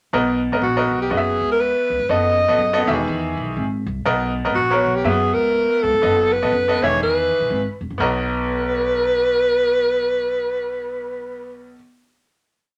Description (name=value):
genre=uptempo 1960s-style soul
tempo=122 BPM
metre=4/4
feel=swing 61% on 8ths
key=B major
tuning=A4 = 440 Hz
part: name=bright upright piano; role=accompaniment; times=0.1-11.8 s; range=B1 to A#5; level=-24 LUFS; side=equal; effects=none
part: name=upright bass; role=bass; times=0.1-11.7 s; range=E1 to F#2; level=-29 LUFS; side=equal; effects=none
part: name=breathy alto saxophone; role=melody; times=0.6-11.8 s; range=F#4 to D#5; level=-21 LUFS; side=equal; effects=none
room=moderate studio ambience, RT60 0.5 s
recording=none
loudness=-19 LUFS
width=mono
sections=0.1-8.0 verse; 8.0-11.9 final chord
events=none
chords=0.1 Bmaj7; 1.1 F#7sus4; 2.1 B7/F#; 2.8 Emaj7; 4.1 Bmaj7; 5.0 F#7sus4; 6.0 B7/F#; 6.8 Emaj7; 8.0 Bmaj7